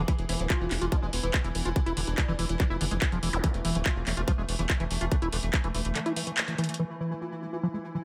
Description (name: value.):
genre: psychedelic trance.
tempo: 143 BPM.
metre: 4/4.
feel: straight.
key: unclear.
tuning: A4 = 444 Hz.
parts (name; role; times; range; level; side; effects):
pulsing gated texture; sustained chords; 0.0-8.0 s; E3 to G#4; -39 LUFS; equal; chorus, built-in reverb, sidechain pumping.
round analog bass; bass; 0.0-5.9 s; D1 to F1; -33 LUFS; equal; none.
liquid acid bass; riff; 0.1-8.0 s; D3 to F4; -35 LUFS; equal; phaser, cassette tape, sidechain pumping, digital delay.
drum and bass drum kit; drums; 0.1-6.8 s; handclaps, hi-hat; -34 LUFS; equal; none.
electronic kick drum; drums; 0.1-5.6 s; none; -29 LUFS; equal; none.
vowel-sweep wobble bass; second line; 0.3-2.5 s; B3 to D4; -43 LUFS; equal; chorus, sidechain pumping, high-pass filter, digital delay.
zap; sound effects; 3.3-3.4 s; none; -39 LUFS; equal; none.
room: light reverb, digital ambience.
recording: none.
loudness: -29 LUFS.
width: mono.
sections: 0.0-6.8 A section; 6.8-8.0 B section.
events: filter sweep on acid bass 0.0-6.8; band accent 6.4; drum fill 6.6.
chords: 0.0 E5.